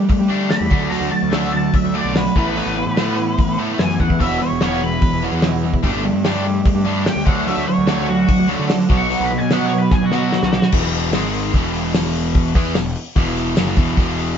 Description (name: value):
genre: classic rock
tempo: 147 BPM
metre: 4/4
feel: straight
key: unclear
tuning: A4 = 440 Hz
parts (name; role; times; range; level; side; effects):
- picked swing-style acoustic guitar; accompaniment; 0.0-10.7 s; E2 to G4; -26 LUFS; right 5 dB; none
- cranked stack guitar; riff; 0.0-14.4 s; E2 to E4; -22 LUFS; left 6 dB; overdrive
- sludgy distorted guitar; riff; 0.0-14.4 s; E2 to E4; -22 LUFS; right 8 dB; overdrive
- fuzz picked electric bass; bass; 0.0-14.4 s; E1 to G3; -23 LUFS; equal; overdrive
- damped 70s drum kit; drums; 0.1-14.3 s; crash cymbal, hi-hat, kick drum, snare drum; -20 LUFS; equal; none
- octave-fuzz lead guitar; melody; 0.5-10.7 s; F#4 to C#6; -24 LUFS; left 1 dB; wah, distortion
- tambourine; percussion; 11.1-13.7 s; none; -39 LUFS; left 5 dB; none
room: light reverb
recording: band playing live in one room, nothing above 7.6 kHz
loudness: -15 LUFS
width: side -8 dB against mid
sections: 0.0-10.7 A section; 10.7-14.4 B section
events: lead electric guitar solo 0.0-10.7; drum fill 9.9-10.7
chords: 0.0 Gsus2; 0.7 D; 2.4 Asus2; 4.2 Eadd9; 5.8 Gsus2; 7.3 D; 8.9 B; 10.7 E5; 11.1 G#5; 11.5 E5